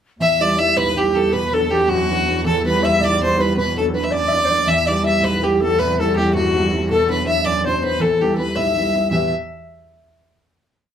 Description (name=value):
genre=celtic folk, Celtic jig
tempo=108 BPM (dotted quarters)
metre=6/8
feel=straight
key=E minor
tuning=A4 = 441 Hz
part: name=clear fiddle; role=melody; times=0.2-9.3 s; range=F#4 to E5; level=-20 LUFS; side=right 2 dB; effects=none
part: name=mellow wooden flute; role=second line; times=0.2-9.3 s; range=F#4 to E5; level=-20 LUFS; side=left 3 dB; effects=none
part: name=warm baby grand piano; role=accompaniment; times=0.2-9.3 s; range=G1 to B4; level=-22 LUFS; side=right 1 dB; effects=none
part: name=warm cello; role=drone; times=0.2-9.2 s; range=E2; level=-26 LUFS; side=equal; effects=none
room=wet studio reverb, RT60 0.6 s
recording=band playing live in one room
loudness=-15 LUFS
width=side -8 dB against mid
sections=0.2-9.1 A section; 9.1-10.2 final chord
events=none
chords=0.2 Em; 1.3 Bm; 2.4 Em; 3.6 Bm; 4.7 Em; 5.8 C; 6.9 Bm; 8.0 Em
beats=| 0.21 0.77 | 1.32 1.88 | 2.44 3.00 | 3.55 4.11 | 4.67 5.22 | 5.78 6.33 | 6.89 7.45 | 8.00 8.56 | 9.11